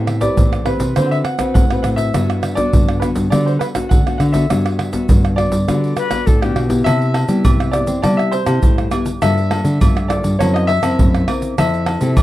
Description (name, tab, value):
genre	samba and choro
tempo	102 BPM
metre	4/4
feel	straight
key	G major, C major from 6.9 s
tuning	A4 = 435 Hz
part	warm grand piano	melody	0.0-12.2 s	B4 to F#5	-22 LUFS	left 1 dB	none
part	nylon-string guitar	accompaniment	0.0-12.2 s	G2 to B4	-21 LUFS	left 2 dB	none
part	nylon-string guitar	bass	0.0-12.2 s	F2 to C4	-18 LUFS	equal	none
part	pandeiro, tamborim, tube shaker, surdo and agogo bells	percussion	0.1-12.2 s	none	-17 LUFS	right 1 dB	none
part	reedy concert flute	second line	6.0-6.9 s	G4 to B4	-22 LUFS	left 5 dB	none
room	light reverb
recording	dry, close 1970s-style studio recording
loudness	-13 LUFS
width	side -15 dB against mid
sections	0.0-6.9 A section; 6.9-12.2 B section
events	none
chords	0.0 Am9; 1.0 D6; 2.1 Gmaj7; 6.9 Cmaj7; 9.2 Gm9; 10.4 F#7#11; 11.6 Fmaj7